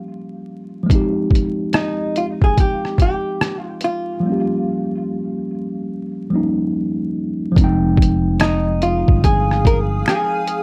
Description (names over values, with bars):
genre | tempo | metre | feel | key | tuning
lo-fi hip hop | 72 BPM | 4/4 | swing 65% on 16ths | F minor | A4 = 439 Hz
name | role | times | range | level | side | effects
vintage hollow-body jazz guitar | melody | 0.0-10.6 s | Eb4 to Bb4 | -24 LUFS | equal | tape echo
mellow tine electric piano | accompaniment | 0.0-10.6 s | F3 to G5 | -23 LUFS | equal | none
trip hop sampler-style drum kit | drums | 0.9-10.6 s | hi-hat, kick drum, rim click | -18 LUFS | equal | none
granular cloud pad | sustained chords | 8.9-10.6 s | Ab4 to Eb6 | -30 LUFS | equal | built-in reverb
fretless electric bass | bass | 7.6-10.0 s | F1 to G1 | -22 LUFS | equal | none
finger snap | percussion | 8.4-10.3 s | none | -36 LUFS | equal | none
room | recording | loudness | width
light reverb | vinyl crackle | -18 LUFS | mono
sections
0.0-7.6 A section; 7.6-10.6 B section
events
break 4.2-7.6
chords
0.0 Gm7b5; 0.9 Fm9; 4.2 Gm7b5; 7.6 Fm9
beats
0.07 | 0.90 1.73 2.57 3.40 | 4.23 5.07 5.90 6.73 | 7.57 8.40 9.23 10.07